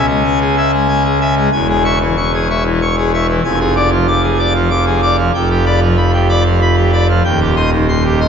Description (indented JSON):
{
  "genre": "classical, organ toccata",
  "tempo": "94 BPM",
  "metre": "3/4",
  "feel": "straight",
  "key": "unclear",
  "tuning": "A4 = 439 Hz",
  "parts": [
    { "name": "pipe organ, full organ", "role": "solo", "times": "0.0-8.3 s", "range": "Eb1 to D6", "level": "-11 LUFS", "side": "equal", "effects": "none" }
  ],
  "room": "wet cathedral reverb, RT60 4.2 s",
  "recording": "nothing above 8.0 kHz",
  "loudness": "-11 LUFS",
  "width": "side -7 dB against mid",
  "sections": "0.0-8.3 A section",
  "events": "none",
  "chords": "0.0 C#m; 1.5 C#m/E; 3.4 Ddim/F; 5.3 G7/F; 7.3 Cm/Eb",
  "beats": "0.25 0.90 | 1.53 2.17 2.81 | 3.45 4.08 4.72 | 5.35 5.99 6.62 | 7.26 7.89"
}